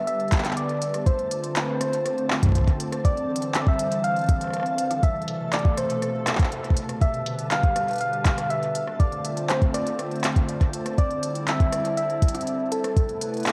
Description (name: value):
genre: IDM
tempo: 121 BPM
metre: 4/4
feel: straight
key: unclear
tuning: A4 = 440 Hz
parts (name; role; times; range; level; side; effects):
- soft struck synth lead; melody; 0.0-13.5 s; A4 to F5; -30 LUFS; equal; chorus, dub echo
- hollow soft pad; sustained chords; 0.0-13.5 s; B2 to C5; -32 LUFS; equal; chorus, vintage 12-bit sampler grit
- flickering grainy texture; texture; 0.0-13.5 s; A4 to A5; -44 LUFS; equal; built-in reverb
- organic electronic drum kit; drums; 0.1-13.5 s; handclaps, hi-hat, rim click; -32 LUFS; equal; overdrive
- electronic kick drum; drums; 0.3-13.1 s; none; -23 LUFS; equal; none
room: moderate spring reverb, RT60 1.6 s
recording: echo-heavy mix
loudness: -24 LUFS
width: mono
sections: 0.0-13.5 A section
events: none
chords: 0.0 G; 1.1 Dm7; 3.0 Cadd9; 5.0 Amadd9; 7.0 G; 9.0 Dm7; 11.0 Cadd9; 13.0 Amadd9